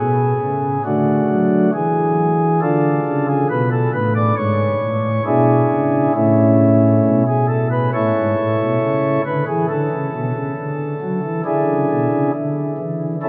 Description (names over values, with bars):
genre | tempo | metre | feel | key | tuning
classical, chorale-style piece for pipe organ | 68 BPM | 4/4 | rubato | A major | A4 = 440 Hz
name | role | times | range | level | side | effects
pipe organ, flutes | solo | 0.0-13.3 s | G#2 to D5 | -17 LUFS | equal | none
room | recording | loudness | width
wet cathedral reverb, RT60 6.4 s | in a vast, echoing space | -17 LUFS | mono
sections
0.0-13.3 A section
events
none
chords
0.0 N.C.; 0.8 D; 2.6 Dm; 4.4 E7/G#; 9.7 Bm; 11.5 E7